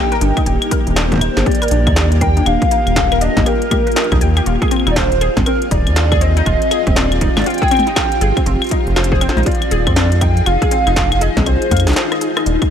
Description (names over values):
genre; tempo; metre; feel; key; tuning
IDM; 120 BPM; 4/4; swing 62% on 16ths; unclear; A4 = 444 Hz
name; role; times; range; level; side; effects
warbly nostalgic lead; melody; 0.0-12.2 s; Bb4 to G5; -20 LUFS; equal; lush chorus, ping-pong delay
granular cloud pad; sustained chords; 0.0-12.7 s; Bb3 to Ab4; -21 LUFS; left 1 dB; built-in reverb, sidechain pumping
warbly dusty pluck; arpeggios; 0.0-12.6 s; C4 to G5; -22 LUFS; left 3 dB; wide subtle chorus, digital delay
industrial drum kit; drums; 0.1-12.7 s; claves, hi-hat, rim click, snare drum, toms; -20 LUFS; left 1 dB; studio reverb
round analog bass; bass; 0.2-12.6 s; Eb1 to F2; -16 LUFS; equal; none
electronic kick drum; drums; 0.4-12.7 s; none; -18 LUFS; equal; studio reverb
room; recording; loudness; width
light reverb, digital ambience; faint mains hum; -12 LUFS; side -8 dB against mid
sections
0.0-12.7 A section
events
break 12.0-12.5; drum fill 12.0-12.5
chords
0.0 Ebmaj7; 4.5 Ab6/Eb; 8.5 Fm7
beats
| 0.46 0.96 1.46 1.96 | 2.46 2.96 3.46 3.96 | 4.46 4.96 5.46 5.96 | 6.46 6.96 7.46 7.96 | 8.46 8.96 9.46 9.96 | 10.46 10.96 11.46 11.96 | 12.46